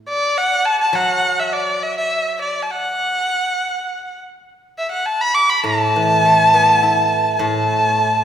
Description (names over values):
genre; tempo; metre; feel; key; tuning
chinese traditional; 103 BPM; 4/4; rubato; unclear; A4 = 435 Hz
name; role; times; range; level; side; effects
clear erhu; melody; 0.1-8.2 s; D5 to D6; -15 LUFS; equal; none
steel-string zither; accompaniment; 0.9-8.2 s; A2 to E4; -21 LUFS; right 1 dB; none
room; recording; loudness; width
wet recital hall reverb, RT60 1.8 s; heard from further back in the room; -14 LUFS; side -9 dB against mid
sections
0.0-8.2 A section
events
none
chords
none